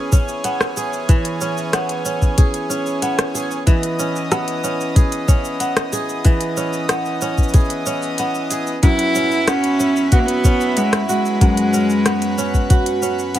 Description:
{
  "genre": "folktronica",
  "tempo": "93 BPM",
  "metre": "4/4",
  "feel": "straight",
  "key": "unclear",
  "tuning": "A4 = 441 Hz",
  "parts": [
    { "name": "accordion", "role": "sustained chords", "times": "0.0-13.4 s", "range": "E3 to D#5", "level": "-26 LUFS", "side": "equal", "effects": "none" },
    { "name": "kora", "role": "arpeggios", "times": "0.0-13.4 s", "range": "F#2 to G#4", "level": "-21 LUFS", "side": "right 1 dB", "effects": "ping-pong delay" },
    { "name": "electronic kick drum", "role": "drums", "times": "0.1-12.8 s", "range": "none", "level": "-13 LUFS", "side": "equal", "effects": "none" },
    { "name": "organic electronic drum kit", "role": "drums", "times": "0.1-13.4 s", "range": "hi-hat, rim click, shaker", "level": "-23 LUFS", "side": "equal", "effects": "none" },
    { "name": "clear cello", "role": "melody", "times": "8.8-13.4 s", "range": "G#3 to E4", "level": "-18 LUFS", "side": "equal", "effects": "none" }
  ],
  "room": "light reverb, studio reverb",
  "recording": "none",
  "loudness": "-15 LUFS",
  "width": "side -12 dB against mid",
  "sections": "0.0-13.4 A section",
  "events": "none",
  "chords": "0.0 E6; 3.7 C#m7/E; 8.8 F#7sus4"
}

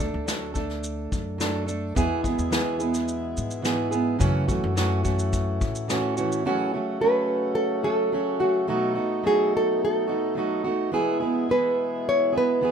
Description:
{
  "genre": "acoustic pop",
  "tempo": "107 BPM",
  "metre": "4/4",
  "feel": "straight",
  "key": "A major",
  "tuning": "A4 = 442 Hz",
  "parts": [
    { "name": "nylon-string guitar", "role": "melody", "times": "0.0-1.4, 6.5-12.7 s", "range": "F#4 to D5", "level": "-24 LUFS", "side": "equal", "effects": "none" },
    { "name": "fingerpicked plugged-in steel-string acoustic guitar", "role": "accompaniment", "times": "0.0-12.7 s", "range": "F#2 to A4", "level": "-26 LUFS", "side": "right 3 dB", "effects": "none" },
    { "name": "upright bass", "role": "bass", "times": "0.0-6.4 s", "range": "D2 to A2", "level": "-29 LUFS", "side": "left 1 dB", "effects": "none" },
    { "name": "soft brush drum kit", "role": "drums", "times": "0.0-6.4 s", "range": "kick drum, shaker, snare drum", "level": "-29 LUFS", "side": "left 2 dB", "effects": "none" },
    { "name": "hand-pumped harmonium", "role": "sustained chords", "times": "2.0-12.7 s", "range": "B2 to F#4", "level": "-34 LUFS", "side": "left 5 dB", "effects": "none" }
  ],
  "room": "light reverb",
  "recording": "minimal, uncompressed stereo recording",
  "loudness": "-22 LUFS",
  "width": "side -7 dB against mid",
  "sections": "0.0-6.5 A section; 6.5-12.7 B section",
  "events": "none",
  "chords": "0.0 D; 2.0 E; 4.2 F#m7; 6.5 A6; 8.7 B7; 10.9 E"
}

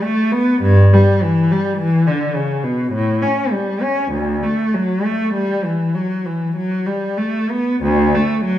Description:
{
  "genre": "classical, baroque-style suite movement for unaccompanied cello",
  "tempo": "46-53 BPM",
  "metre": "3/4",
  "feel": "rubato",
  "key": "D major",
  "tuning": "A4 = 441 Hz",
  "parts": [
    { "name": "warm cello", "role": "solo", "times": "0.0-8.6 s", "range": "D2 to C#4", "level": "-15 LUFS", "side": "equal", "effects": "none" }
  ],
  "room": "wet recital hall reverb, RT60 1.4 s",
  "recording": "minimal, uncompressed stereo recording",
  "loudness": "-15 LUFS",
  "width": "side -12 dB against mid",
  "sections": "0.0-7.8 A section",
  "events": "none",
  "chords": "none"
}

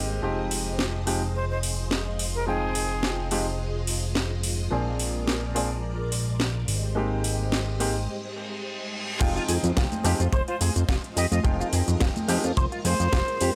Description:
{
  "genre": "nu-disco, nu disco",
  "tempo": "107 BPM",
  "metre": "4/4",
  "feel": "swing 55% on 16ths",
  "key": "F dorian",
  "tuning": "A4 = 443 Hz",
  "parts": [
    { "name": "clear grand piano", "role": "accompaniment", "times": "0.0-12.4 s", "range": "F3 to G5", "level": "-33 LUFS", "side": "equal", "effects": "tape echo" },
    { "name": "string machine, full ensemble", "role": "sustained chords", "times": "0.0-13.6 s", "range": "Ab3 to Eb5", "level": "-38 LUFS", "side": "equal", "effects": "phaser, ensemble chorus, sidechain pumping" },
    { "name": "fat analog bass", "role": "bass", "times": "0.0-13.5 s", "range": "F1 to F2", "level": "-30 LUFS", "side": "equal", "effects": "none" },
    { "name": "house drum kit", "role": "drums", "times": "0.5-13.5 s", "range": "crash cymbal, hi-hat, shaker, snare drum", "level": "-32 LUFS", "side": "equal", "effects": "none" },
    { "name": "breathy bright jazz flute", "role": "melody", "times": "1.4-3.3, 10.3-13.6 s", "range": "Ab4 to Eb5", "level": "-34 LUFS", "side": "equal", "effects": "none" },
    { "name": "reverse cymbal", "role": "sound effects", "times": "8.3-9.2 s", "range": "none", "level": "-37 LUFS", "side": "equal", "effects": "none" },
    { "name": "electric guitar with an envelope filter", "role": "riff", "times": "9.2-13.5 s", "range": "F4 to C5", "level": "-36 LUFS", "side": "equal", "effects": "ensemble chorus" },
    { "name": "kick drum", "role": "drums", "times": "9.2-13.3 s", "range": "none", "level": "-27 LUFS", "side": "equal", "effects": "none" },
    { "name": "bongos and congas", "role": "percussion", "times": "9.4-13.5 s", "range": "none", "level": "-36 LUFS", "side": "equal", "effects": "none" }
  ],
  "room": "light reverb, small room ambience",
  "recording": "none",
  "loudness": "-26 LUFS",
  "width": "mono",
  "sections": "0.0-9.2 A section; 9.2-13.6 B section",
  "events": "break 8.1-9.2; reverse cymbal 8.3-9.2; drop 9.2-13.6",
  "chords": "0.2 Fm7; 4.7 Bb7; 6.7 Abmaj7; 9.2 Fm7"
}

